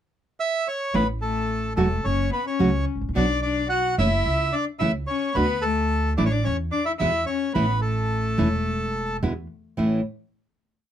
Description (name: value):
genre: tango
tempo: 109 BPM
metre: 4/4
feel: rubato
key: A major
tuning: A4 = 440 Hz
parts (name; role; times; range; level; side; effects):
- bandoneon; melody; 0.4-9.2 s; A4 to F#5; -26 LUFS; right 1 dB; none
- rich cello; second line; 0.9-9.2 s; A3 to F#4; -28 LUFS; left 8 dB; none
- nylon-string guitar; accompaniment; 0.9-10.0 s; A2 to F#4; -23 LUFS; right 2 dB; none
- upright bass; bass; 0.9-10.0 s; E1 to E2; -26 LUFS; right 1 dB; none
room: light reverb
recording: close, detailed microphones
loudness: -21 LUFS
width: side -10 dB against mid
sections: 0.0-0.9 pickup bar; 0.9-9.8 A section; 9.8-10.9 final chord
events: none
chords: 0.0 N.C.; 0.9 A; 2.0 F#m; 3.2 Bm; 4.3 A/C# (rootless); 5.4 D5; 6.5 C#m/E; 7.0 E; 7.6 A5; 9.2 E7; 9.8 A